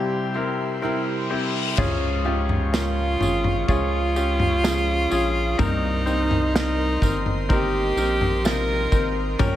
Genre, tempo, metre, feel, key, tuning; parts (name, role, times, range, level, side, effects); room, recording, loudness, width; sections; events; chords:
pop ballad; 63 BPM; 4/4; straight; A4 = 437 Hz
bright alto saxophone; melody; 0.0-9.2 s; Eb4 to Bb4; -25 LUFS; right 1 dB
clear grand piano; accompaniment; 0.0-9.6 s; G2 to C5; -26 LUFS; left 4 dB
airy breathy pad; sustained chords; 0.0-9.6 s; Ab3 to Db6; -33 LUFS; right 1 dB; chorus
nylon-string guitar; arpeggios; 0.0-9.6 s; Bb2 to G4; -32 LUFS; right 6 dB
reverse cymbal; sound effects; 0.8-1.8 s; -32 LUFS; left 5 dB
saturated sub bass; bass; 1.8-9.6 s; G1 to Db2; -26 LUFS; equal
modern studio drum kit; drums; 1.8-9.6 s; crash cymbal, kick drum, snare drum, toms; -24 LUFS; equal
tambourine; percussion; 1.8-9.6 s; -39 LUFS; right 7 dB
light reverb, small room ambience; -20 LUFS; side -12 dB against mid
0.0-1.8 A section; 1.8-9.6 B section
break 0.0-1.8; reverse cymbal 0.8-1.8
0.0 C; 1.8 Db; 5.6 Cm7